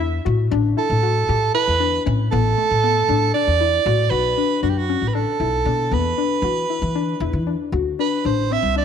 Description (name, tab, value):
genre	progressive instrumental, band music in an uneven meter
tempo	233 BPM (eighths)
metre	7/8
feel	straight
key	B minor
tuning	A4 = 439 Hz
part	clear soprano saxophone	melody	0.0-8.8 s	F#4 to E5	-20 LUFS	right 5 dB	none
part	soft round pluck	arpeggios	0.0-8.8 s	A3 to G4	-24 LUFS	left 11 dB	chorus
part	upright bass	bass	0.0-8.8 s	A1 to E3	-22 LUFS	left 1 dB	none
room	wet echo chamber reverb, RT60 1.9 s, small room ambience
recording	1960s-style stereo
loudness	-17 LUFS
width	side -8 dB against mid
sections	0.0-4.1 A section; 4.1-8.8 B section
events	none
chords	0.0 Asus4; 4.1 Bm7; 5.9 E5; 7.7 D7